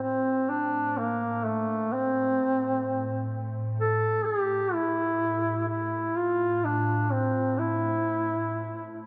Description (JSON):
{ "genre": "caucasian folk, Caucasian lament", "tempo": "63 BPM", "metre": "3/4", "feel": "rubato", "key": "A phrygian", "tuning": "A4 = 440 Hz", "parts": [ { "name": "mellow duduk", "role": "melody", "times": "0.0-9.0 s", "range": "A3 to A4", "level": "-28 LUFS", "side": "equal", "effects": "none" }, { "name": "ethereal airy pad", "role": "drone", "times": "0.0-9.1 s", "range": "A2", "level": "-36 LUFS", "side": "equal", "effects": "ensemble chorus, built-in reverb, phaser" } ], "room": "wet cathedral reverb, RT60 5.0 s", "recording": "none", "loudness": "-27 LUFS", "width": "mono", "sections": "0.0-9.1 A section", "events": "none", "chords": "none", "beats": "0.48 | 1.43 2.37 3.30 | 4.24 5.19 6.14 | 7.10 8.06 9.03" }